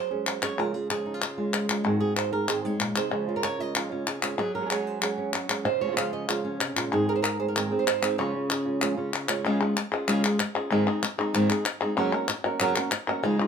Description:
flamenco; 190 BPM; 4/4; straight; Db major; A4 = 440 Hz
flamenco guitar; melody; 0.0-13.5 s; Ab2 to F5; -27 LUFS; right 1 dB
flamenco guitar; stabs; 0.1-9.4, 12.0-13.5 s; Gb2 to Ab4; -30 LUFS; right 4 dB
palmas hand claps; percussion; 0.3-13.5 s; -28 LUFS; left 5 dB
wet studio reverb, RT60 0.5 s; -24 LUFS; side -6 dB against mid
0.0-9.5 A section; 9.5-13.5 B section
0.0 Gbsus2; 0.6 Db; 1.9 Ab; 3.1 Db; 4.4 Gbsus2; 5.7 Db; 6.9 Ab; 8.2 Db; 10.7 Ab; 12.0 Gb

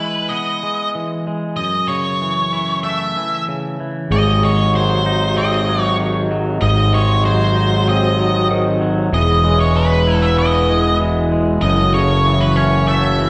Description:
post-rock; 96 BPM; 4/4; straight; A4 = 440 Hz
octave-fuzz lead guitar; melody; 0.0-13.3 s; B4 to E5; -22 LUFS; equal; distortion
twangy electric guitar; arpeggios; 0.0-13.3 s; F#2 to E4; -22 LUFS; equal
hand-pumped harmonium; sustained chords; 4.1-13.3 s; B#2 to A4; -28 LUFS; equal
vibraphone with soft mallets; arpeggios; 4.1-13.3 s; E4 to B#5; -27 LUFS; equal
fuzz fingered electric bass; bass; 4.1-13.3 s; E1 to G#1; -19 LUFS; equal; overdrive
wet recital hall reverb, RT60 1.5 s; recorded in a church or concert hall; -16 LUFS; mono
0.0-4.1 A section; 4.1-13.3 A section
0.0 E; 1.6 F#m7; 4.1 G#7; 9.1 E; 11.6 F#m7

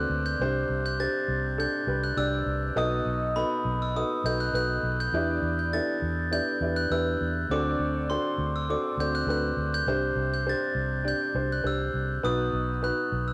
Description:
piano-driven pop; 101 BPM; 4/4; straight; A4 = 440 Hz
glockenspiel with soft plastic mallets; melody; 0.0-13.3 s; B5 to A6; -32 LUFS; equal; cassette tape
warm upright piano; accompaniment; 0.0-13.3 s; B2 to D#5; -32 LUFS; equal; cassette tape
vintage muted fingered electric bass; bass; 0.0-13.3 s; B1 to E2; -33 LUFS; equal
light reverb, small room ambience; home recording on cassette; -28 LUFS; mono
0.0-13.3 A section
0.4 Csus2; 2.8 B7; 5.1 Em7; 7.5 D7; 9.9 Csus2; 12.2 B

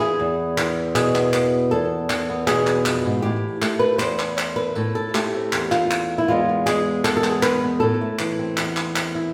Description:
flamenco; 158 BPM; 4/4; straight; A minor; A4 = 440 Hz
flamenco guitar; melody; 0.0-9.3 s; E2 to C5; -22 LUFS; equal; slapback echo
palmas hand claps; percussion; 0.6-9.1 s; -28 LUFS; equal
wet stone room reverb, RT60 1.3 s; heard from further back in the room; -21 LUFS; mono
0.0-9.3 A section
0.2 E; 3.2 Am7; 6.3 E; 7.8 Am

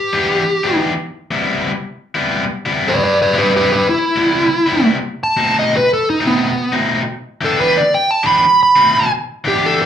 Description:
blues; 118 BPM; 4/4; swing 64% on 8ths; A4 = 442 Hz
dark smooth lead guitar; melody; 0.0-9.9 s; B3 to B5; -13 LUFS; right 1 dB; overdrive, slapback echo
cranked stack guitar; riff; 0.1-9.8 s; B2 to G4; -18 LUFS; left 2 dB; overdrive, slapback echo
light reverb; live gig heard through the venue's PA, club reverb; -13 LUFS; side -9 dB against mid
0.0-9.5 A section
0.0 Em7; 1.3 Cmaj7; 5.4 B7b9; 7.4 Em7; 8.4 B7b9

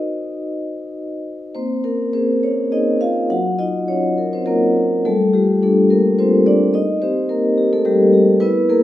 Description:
classical, contemporary piece for solo vibraphone; 105 BPM; 3/4; uneven beats, rubato; Eb dorian; A4 = 438 Hz
vibraphone with soft mallets; solo; 0.0-8.8 s; Gb3 to Gb5; -15 LUFS; left 1 dB
wet recital hall reverb, RT60 1.4 s; minimal, uncompressed stereo recording; -14 LUFS; side -13 dB against mid
0.0-1.6 A section; 1.6-8.8 A section
0.0 Ebm6; 1.6 Bbm9; 3.3 Gbmaj7; 5.1 Gm9; 6.7 Eb

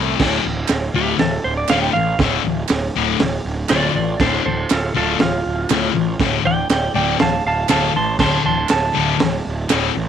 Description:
garage rock duo or trio; 120 BPM; 4/4; straight; D minor; A4 = 440 Hz
thick fuzz guitar; riff; 0.0-9.9 s; D2 to A3; -20 LUFS; left 9 dB; distortion
fuzz picked electric bass; bass; 0.0-10.1 s; D1 to C2; -24 LUFS; right 2 dB; overdrive
crunchy breakbeat drum kit; drums; 0.2-9.8 s; crash cymbal, hi-hat, kick drum, snare drum; -21 LUFS; right 2 dB
group handclap; percussion; 0.7-9.8 s; -26 LUFS; right 17 dB
clean lap steel guitar; melody; 1.0-10.1 s; F4 to C6; -21 LUFS; right 3 dB
small room ambience; 1960s-style stereo with parts hard left and right; -16 LUFS; side -9 dB against mid
0.2-10.1 A section
electric slide guitar solo 0.2-10.1
0.2 Dm

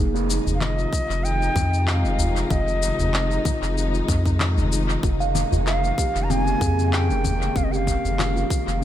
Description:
organic downtempo; 95 BPM; 4/4; swing 54% on 16ths; F minor; A4 = 442 Hz
dark studio string section; sustained chords; 0.0-8.8 s; C3 to Eb4; -28 LUFS; left 3 dB; sidechain pumping
warm sub bass; bass; 0.0-8.8 s; F1 to F2; -23 LUFS; equal
electronic shaker, handclaps and congas; drums; 0.2-8.8 s; -29 LUFS; left 3 dB; studio reverb, dub echo
bright reedy bansuri; melody; 0.5-8.8 s; Eb5 to Bb5; -27 LUFS; equal; dub echo
udu; percussion; 0.5-8.2 s; -28 LUFS; equal
electronic kick drum; drums; 0.9-8.6 s; -24 LUFS; equal; studio reverb
steel tongue drum; arpeggios; 5.0-8.8 s; C4 to F5; -27 LUFS; right 3 dB; dub echo
light reverb, small room ambience; echo-heavy mix; -19 LUFS; side -11 dB against mid
0.0-8.8 A section
0.0 Fm7; 5.0 Eb7sus4/F

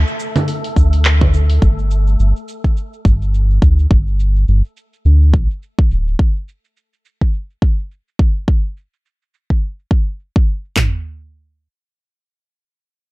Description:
organic downtempo; 105 BPM; 4/4; swing 58% on 16ths; A4 = 441 Hz
round analog bass; bass; 0.0-6.2 s; D1 to D2; -12 LUFS; equal; sidechain pumping
wind-like tuned noise texture; texture; 0.0-1.6 s; A3 to A4; -28 LUFS; equal; built-in reverb
deep house drum kit; drums; 0.1-10.7 s; cabasa, congas, handclaps, hi-hat; -19 LUFS; right 1 dB; low-pass filter on hats, low-pass filter on perc, low-pass filter on snare
deep house drum kit; drums; 0.8-10.9 s; handclaps, kick drum, toms; -14 LUFS; equal
digital ambience; -13 LUFS; side -22 dB against mid
0.0-10.8 A section; 10.8-13.0 B section
filter sweep on analog synth bass 0.0-6.2
0.0 D5; 1.6 G5; 6.2 N.C.

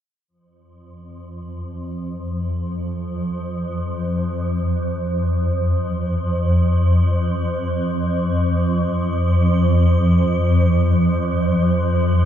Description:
ambient; free time; A4 = 440 Hz
swarming drone; drone; 1.3-12.3 s; F2 to F3; -17 LUFS; equal; built-in reverb
wet cathedral reverb, RT60 5.1 s; cassette tape; -17 LUFS; side -10 dB against mid
0.3-12.3 A section

